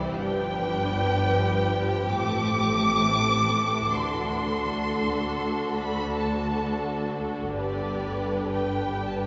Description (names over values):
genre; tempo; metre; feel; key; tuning
classical, slow romantic movement for string orchestra; 66 BPM; 4/4; rubato; unclear; A4 = 438 Hz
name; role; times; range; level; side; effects
dark symphonic violin section; melody; 0.0-9.3 s; D5 to D6; -31 LUFS; equal; none
warm symphonic violin section; second line; 0.0-9.3 s; F#4 to C5; -32 LUFS; equal; none
warm symphonic viola section; accompaniment; 0.0-9.3 s; D3 to E4; -35 LUFS; equal; none
warm studio double bass section; bass; 0.0-9.3 s; G1 to D2; -34 LUFS; equal; none
warm symphonic cello section; bass; 0.0-9.3 s; C2 to A2; -34 LUFS; equal; none
room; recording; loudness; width
wet church reverb, RT60 3.6 s; recorded in a church or concert hall, nothing above 7.7 kHz; -26 LUFS; mono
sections
0.0-9.3 A section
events
none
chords
0.2 G7; 2.1 Am7; 3.9 D7; 7.6 G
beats
| 0.23 1.14 2.10 3.02 | 3.92 4.83 5.74 6.64 | 7.56 8.52